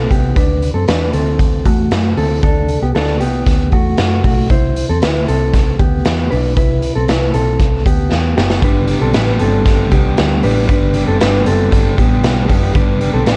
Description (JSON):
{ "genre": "jangly indie pop", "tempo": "116 BPM", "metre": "4/4", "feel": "straight", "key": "G major", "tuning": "A4 = 440 Hz", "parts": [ { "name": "mellow electric guitar", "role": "arpeggios", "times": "0.0-13.4 s", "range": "A3 to C5", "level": "-20 LUFS", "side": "equal", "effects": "plate reverb" }, { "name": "vintage muted picked electric bass", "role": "bass", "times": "0.0-13.4 s", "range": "F#1 to F#2", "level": "-20 LUFS", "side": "equal", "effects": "none" }, { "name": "raw garage drum kit", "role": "drums", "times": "0.1-13.4 s", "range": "hi-hat, kick drum, snare drum", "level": "-18 LUFS", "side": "equal", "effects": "vintage 12-bit sampler grit" }, { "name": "overdriven semi-hollow guitar", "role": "accompaniment", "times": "8.6-13.4 s", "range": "G2 to G4", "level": "-20 LUFS", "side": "equal", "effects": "none" } ], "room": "light reverb", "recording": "cassette tape", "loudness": "-14 LUFS", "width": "mono", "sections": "0.0-13.4 A section", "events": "drum fill 8.1-8.6", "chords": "0.4 D; 4.5 C; 8.6 G" }